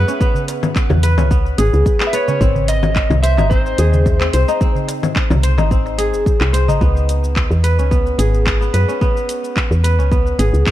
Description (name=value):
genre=organic downtempo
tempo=109 BPM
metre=4/4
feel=straight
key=unclear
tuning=A4 = 440 Hz
part: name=electric slide guitar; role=melody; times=0.0-6.2 s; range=B4 to E5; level=-24 LUFS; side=equal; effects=digital delay
part: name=kora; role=arpeggios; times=0.0-10.7 s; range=B3 to B#4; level=-20 LUFS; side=left 1 dB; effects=ping-pong delay
part: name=woody FM bass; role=bass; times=0.0-10.6 s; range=F#1 to F#2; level=-15 LUFS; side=equal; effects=none
part: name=afro-pop drum kit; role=drums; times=0.1-10.7 s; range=cabasa, congas, handclaps, hi-hat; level=-23 LUFS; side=left 3 dB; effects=none
part: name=electronic kick drum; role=drums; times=0.2-10.7 s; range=none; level=-17 LUFS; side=equal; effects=none
part: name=darbuka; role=percussion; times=0.3-6.8 s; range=none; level=-25 LUFS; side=right 2 dB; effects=none
room=digital ambience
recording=dark, warm production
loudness=-13 LUFS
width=side -14 dB against mid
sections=0.0-6.8 A section; 6.8-10.7 B section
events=none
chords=0.0 C#m7; 2.4 G#; 6.8 C#m7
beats=| 0.21 0.76 1.31 1.86 | 2.41 2.96 3.51 4.06 | 4.61 5.16 5.71 6.26 | 6.81 7.36 7.91 8.46 | 9.01 9.56 10.12 10.66